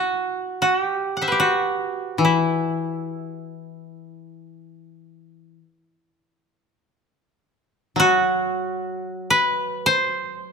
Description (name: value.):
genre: japanese traditional, Japanese chamber music.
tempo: free time.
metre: none.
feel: none.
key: E hirajoshi.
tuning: A4 = 440 Hz.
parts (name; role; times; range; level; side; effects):
koto; melody; 0.0-10.5 s; E4 to F#5; -20 LUFS; right 1 dB; none.
koto; accompaniment; 2.2-10.5 s; E3 to F#3; -25 LUFS; left 4 dB; none.
room: moderate recital hall reverb, RT60 1.7 s.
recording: close, detailed microphones.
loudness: -19 LUFS.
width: side -5 dB against mid.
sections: 0.0-10.5 A section.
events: none.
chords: none.